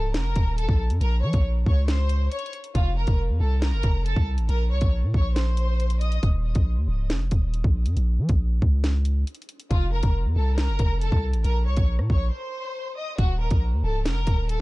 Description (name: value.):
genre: hip hop, drill.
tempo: 138 BPM.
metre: 4/4.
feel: half-time.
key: Bb harmonic minor.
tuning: A4 = 441 Hz.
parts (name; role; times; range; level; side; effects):
warm studio violin section; melody; 0.0-6.2, 9.7-14.6 s; F4 to Eb6; -32 LUFS; left 1 dB; low-pass filter, ping-pong delay.
long sustained 808-style bass; bass; 0.0-14.6 s; Db1 to F3; -23 LUFS; equal; none.
drill drum kit; drums; 0.1-14.6 s; hi-hat, kick drum, rim click, snare drum; -23 LUFS; equal; vintage 12-bit sampler grit.
room: studio reverb.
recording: dark, warm production.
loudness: -21 LUFS.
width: side -20 dB against mid.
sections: 0.0-14.6 A section.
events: break 12.3-13.2.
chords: 0.0 Ebm; 1.0 Bbmadd9; 2.8 Fsus4; 4.5 Bbmadd9; 6.2 Eb5; 8.0 Bbm; 9.7 Fsus4; 11.4 Bbmadd9; 13.2 Ebm.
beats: 0.14 0.58 | 1.01 1.45 1.88 2.32 | 2.75 3.19 3.62 4.05 | 4.49 4.92 5.36 5.79 | 6.23 6.66 7.10 7.53 | 7.97 8.40 8.84 9.27 | 9.71 10.14 10.58 11.01 | 11.45 11.88 12.32 12.75 | 13.19 13.62 14.05 14.49.